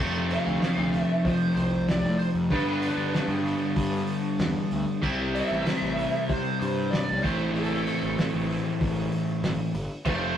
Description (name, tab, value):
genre	classic rock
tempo	95 BPM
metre	4/4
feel	straight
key	A minor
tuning	A4 = 440 Hz
part	crunchy overdriven guitar	riff	0.0-10.4 s	F2 to F4	-26 LUFS	left 1 dB	none
part	fuzz picked electric bass	bass	0.0-10.4 s	F1 to F3	-32 LUFS	equal	overdrive
part	lead guitar through a small cranked amp	melody	0.3-10.4 s	A4 to F5	-31 LUFS	right 2 dB	wah, overdrive
part	cloth-damped thuddy drum kit	drums	0.3-10.2 s	crash cymbal, hi-hat, kick drum, snare drum	-32 LUFS	equal	none
room	wet studio reverb, RT60 0.6 s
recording	rough rehearsal-room recording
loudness	-24 LUFS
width	side -10 dB against mid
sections	0.0-10.4 A section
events	none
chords	0.0 F; 2.5 G; 5.0 C; 7.2 Am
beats	0.62 1.25 1.88 | 2.52 3.15 3.77 4.40 | 5.03 5.66 6.29 6.92 | 7.55 8.18 8.80 9.43 | 10.06